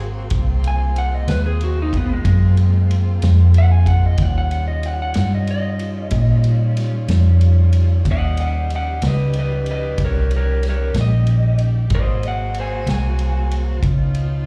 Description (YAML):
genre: slow blues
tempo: 62 BPM (dotted quarters)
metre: 12/8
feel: straight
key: unclear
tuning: A4 = 439 Hz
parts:
  - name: mellow tonewheel organ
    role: sustained chords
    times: 0.0-14.5 s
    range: F3 to Db5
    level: -36 LUFS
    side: equal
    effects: slow rotary speaker
  - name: warm horn section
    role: sustained chords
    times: 0.0-14.5 s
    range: Db3 to G4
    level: -37 LUFS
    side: equal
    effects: none
  - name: vintage muted fingered electric bass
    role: bass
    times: 0.0-14.5 s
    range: Ab1 to Bb2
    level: -18 LUFS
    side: equal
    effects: none
  - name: vintage drum kit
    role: drums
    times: 0.3-14.3 s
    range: kick drum, ride cymbal, snare drum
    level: -27 LUFS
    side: equal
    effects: none
  - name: electric guitar through a small old amp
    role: melody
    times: 0.7-13.5 s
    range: Ab3 to Ab5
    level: -28 LUFS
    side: equal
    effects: slapback echo
room: little or no reverb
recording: live gig heard through the venue's PA, club reverb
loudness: -18 LUFS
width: mono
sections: 0.0-14.5 A section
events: clean electric guitar solo 0.0-14.5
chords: 0.0 Ab9; 4.2 Eb9; 11.9 Ab9; 13.8 Db9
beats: | 0.32 1.29 2.26 3.23 | 4.19 5.16 6.12 7.09 | 8.05 9.02 9.98 10.95 | 11.91 12.87 13.83